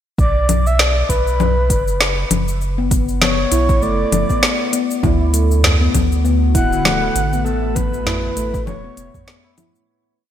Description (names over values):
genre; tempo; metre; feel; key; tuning
organic downtempo; 99 BPM; 4/4; swing 57% on 16ths; B minor; A4 = 441 Hz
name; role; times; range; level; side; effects
breathy flute-like synth lead; melody; 0.2-9.5 s; A4 to F#5; -22 LUFS; left 1 dB; chorus, digital delay
round analog bass; bass; 0.2-9.1 s; D1 to D2; -18 LUFS; right 1 dB; sidechain pumping
afro-pop drum kit; drums; 0.2-9.9 s; cabasa, congas, hi-hat, snare drum; -19 LUFS; left 2 dB; gated reverb
electronic kick drum; drums; 0.2-9.2 s; none; -19 LUFS; right 1 dB; none
handpan; arpeggios; 2.8-9.7 s; A3 to E4; -21 LUFS; left 2 dB; ping-pong delay
ethereal airy pad; sustained chords; 6.3-9.9 s; A2 to E5; -27 LUFS; left 3 dB; ensemble chorus, built-in reverb, phaser, sidechain pumping
tabla; percussion; 5.2-9.7 s; none; -28 LUFS; left 2 dB; none
room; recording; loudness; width
light reverb; bright 1980s-style digital production; -14 LUFS; side -10 dB against mid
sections
0.2-9.9 groove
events
fade-out 6.7-9.9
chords
0.2 Bm; 5.0 D6; 7.5 Aadd9